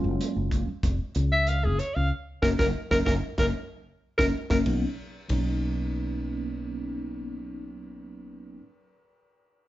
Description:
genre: electric jazz fusion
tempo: 94 BPM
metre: 4/4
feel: straight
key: B lydian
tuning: A4 = 439 Hz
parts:
  - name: bright tine electric piano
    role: accompaniment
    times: 0.0-8.6 s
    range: F#3 to E#4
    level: -31 LUFS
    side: right 1 dB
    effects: medium stereo tremolo, phaser
  - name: woody fretless electric bass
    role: bass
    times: 0.0-8.6 s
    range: E#1 to C#2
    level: -28 LUFS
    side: equal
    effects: none
  - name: crisp fusion drum kit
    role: drums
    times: 0.2-5.5 s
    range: hi-hat, kick drum, ride cymbal, snare drum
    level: -30 LUFS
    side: equal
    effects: none
  - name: clear alto saxophone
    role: melody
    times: 1.3-4.6 s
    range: G#4 to E#5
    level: -27 LUFS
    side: left 1 dB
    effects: none
room: light reverb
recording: band playing live in one room, nothing above 7.6 kHz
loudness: -25 LUFS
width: side -15 dB against mid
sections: 0.0-4.7 A section; 4.7-7.2 B section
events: alto saxophone solo 0.0-4.7; band accent 2.1-4.7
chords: 0.0 F#maj9; 4.7 Bmaj9

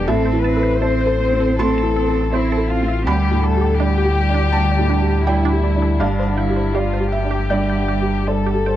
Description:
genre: neoclassical piano and strings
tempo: 81 BPM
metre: 4/4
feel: rubato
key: A minor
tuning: A4 = 440 Hz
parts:
  - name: muted chamber violin section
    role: melody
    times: 0.0-8.8 s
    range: D4 to C5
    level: -22 LUFS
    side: left 6 dB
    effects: none
  - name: muted cello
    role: second line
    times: 0.0-8.8 s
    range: G3 to C4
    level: -24 LUFS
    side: right 6 dB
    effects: none
  - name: felt-muted upright piano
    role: accompaniment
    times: 0.0-8.8 s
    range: D2 to C6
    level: -22 LUFS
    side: right 1 dB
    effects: none
  - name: sub bass with octave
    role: bass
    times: 0.0-8.8 s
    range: G1 to D2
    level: -20 LUFS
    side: equal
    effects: none
  - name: resonant blip pluck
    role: arpeggios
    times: 0.1-8.8 s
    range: D4 to A5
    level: -29 LUFS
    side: right 4 dB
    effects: phaser, tape echo
room: little or no reverb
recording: dry, close 1970s-style studio recording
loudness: -15 LUFS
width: side -12 dB against mid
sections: 0.0-8.8 A section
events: none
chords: 0.1 Am; 3.1 Dsus4; 6.0 Gsus4

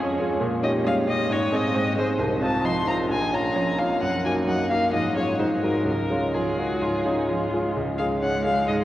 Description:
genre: quick classical-period movement for piano quartet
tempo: 131 BPM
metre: 4/4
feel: rubato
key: Db major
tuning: A4 = 441 Hz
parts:
  - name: rich violin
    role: melody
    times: 0.0-8.8 s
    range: Ab4 to C6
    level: -27 LUFS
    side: left 2 dB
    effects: none
  - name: rich cello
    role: second line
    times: 0.0-8.8 s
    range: F3 to Ab3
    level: -33 LUFS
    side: right 2 dB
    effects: none
  - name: bright grand piano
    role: accompaniment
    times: 0.0-8.8 s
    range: Bb1 to Ab4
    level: -23 LUFS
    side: equal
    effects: none
  - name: rich viola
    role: accompaniment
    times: 0.0-8.8 s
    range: C4 to Ab4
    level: -33 LUFS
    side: right 1 dB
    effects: none
room: wet cathedral reverb, RT60 7.2 s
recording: worn, warbling old tape, cassette tape, warbly pitch drift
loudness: -21 LUFS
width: side -14 dB against mid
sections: 0.0-7.8 A section; 7.8-8.8 A section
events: none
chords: 0.4 Eb7/Bb; 1.3 Ab; 2.2 F5/C; 3.1 Bbm; 4.0 Ebm/Gb; 4.9 Db/Ab; 5.4 Ab7(no3); 5.9 Db

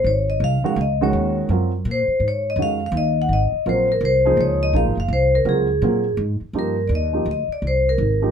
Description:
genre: modal jazz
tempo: 166 BPM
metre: 3/4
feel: swing 63% on 8ths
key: unclear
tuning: A4 = 440 Hz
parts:
  - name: vibraphone with medium hard mallets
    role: melody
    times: 0.0-8.3 s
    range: G#4 to F#5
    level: -20 LUFS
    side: left 1 dB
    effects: none
  - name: upright bass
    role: bass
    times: 0.0-8.3 s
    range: F#1 to A#2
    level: -22 LUFS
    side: equal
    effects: none
  - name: dark upright piano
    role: accompaniment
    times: 0.6-8.3 s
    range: D#3 to A#4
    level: -23 LUFS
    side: right 4 dB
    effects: none
room: light reverb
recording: minimal, uncompressed stereo recording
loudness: -17 LUFS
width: side -8 dB against mid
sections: 0.0-6.5 A section; 6.5-8.3 B section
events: none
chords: 0.0 G#13sus4; 6.5 Cm9

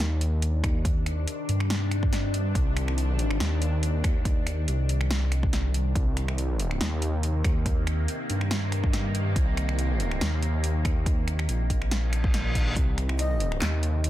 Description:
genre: deep dubstep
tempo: 141 BPM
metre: 4/4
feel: swing 54% on 16ths, half-time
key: C minor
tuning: A4 = 440 Hz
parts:
  - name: bowed-like drone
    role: sustained chords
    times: 0.0-14.1 s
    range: C3 to D4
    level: -34 LUFS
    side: left 1 dB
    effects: built-in reverb, phaser
  - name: dark detuned saw bass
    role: bass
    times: 0.0-14.1 s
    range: Bb1 to G2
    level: -26 LUFS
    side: equal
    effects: none
  - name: deep house drum kit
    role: drums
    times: 0.0-14.1 s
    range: finger snaps, handclaps, hi-hat, snare drum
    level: -33 LUFS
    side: equal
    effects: overdrive
  - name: electronic kick drum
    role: drums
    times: 0.6-12.9 s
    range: none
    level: -26 LUFS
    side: equal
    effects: overdrive
  - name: reverse cymbal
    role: sound effects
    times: 12.1-12.8 s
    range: none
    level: -34 LUFS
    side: left 1 dB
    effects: none
  - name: breathy bright long shakuhachi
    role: melody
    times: 13.2-13.5 s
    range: Eb5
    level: -34 LUFS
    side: left 3 dB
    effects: dub echo
room: little or no reverb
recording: dense, heavily limited modern master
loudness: -24 LUFS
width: side -14 dB against mid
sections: 0.0-14.1 A section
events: reverse cymbal 12.1-12.8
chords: 0.0 Cmadd9

